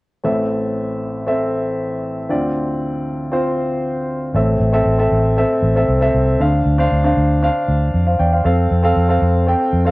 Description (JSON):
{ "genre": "pop", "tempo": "117 BPM", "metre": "4/4", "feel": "straight", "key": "A minor", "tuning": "A4 = 438 Hz", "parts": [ { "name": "clear grand piano", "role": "accompaniment", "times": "0.2-9.9 s", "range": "A1 to G5", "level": "-17 LUFS", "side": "equal", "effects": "cassette tape" }, { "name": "vintage muted fingered electric bass", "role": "bass", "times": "4.3-9.9 s", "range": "A1 to F2", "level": "-16 LUFS", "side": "equal", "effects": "none" } ], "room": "light reverb", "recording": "home recording on cassette", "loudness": "-15 LUFS", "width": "side -21 dB against mid", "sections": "0.2-4.3 A section; 4.3-9.9 B section", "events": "none", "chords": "0.2 Am; 2.3 Dm7; 4.3 Am; 6.4 Dm7; 8.4 F" }